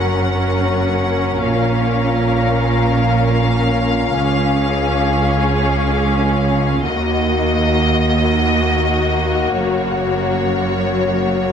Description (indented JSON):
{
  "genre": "cinematic, epic orchestral film score",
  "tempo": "free time",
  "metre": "none",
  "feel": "none",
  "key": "Eb minor",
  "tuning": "A4 = 441 Hz",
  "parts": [
    { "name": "warm symphonic violin section", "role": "melody", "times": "0.0-11.5 s", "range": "Db5 to Gb5", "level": "-22 LUFS", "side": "left 3 dB", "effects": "none" },
    { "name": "dark symphonic violin section", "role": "second line", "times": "0.0-11.5 s", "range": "Gb4 to Bb4", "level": "-24 LUFS", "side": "left 4 dB", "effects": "none" },
    { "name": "rich symphonic viola section", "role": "accompaniment", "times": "0.0-11.5 s", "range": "Bb3 to Db4", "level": "-23 LUFS", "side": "equal", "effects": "none" },
    { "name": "mellow French horn section", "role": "sustained chords", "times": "0.0-11.5 s", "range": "Bb3 to Gb4", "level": "-22 LUFS", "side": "left 5 dB", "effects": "none" },
    { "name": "dark symphonic double bass section", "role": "bass", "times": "0.0-11.5 s", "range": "Gb1 to Eb2", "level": "-20 LUFS", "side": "right 3 dB", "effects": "none" },
    { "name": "rich symphonic cello section", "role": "bass", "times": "0.0-11.5 s", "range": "Db2 to Bb2", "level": "-21 LUFS", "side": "right 4 dB", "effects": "none" }
  ],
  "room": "moderate concert hall reverb, RT60 1.9 s",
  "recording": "none",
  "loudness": "-14 LUFS",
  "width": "side -7 dB against mid",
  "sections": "0.0-11.5 A section",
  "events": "build-up 0.0-11.5",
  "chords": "0.0 Gb; 1.4 Bbm; 4.1 Db; 6.8 Ebm; 9.5 Gb",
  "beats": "free time"
}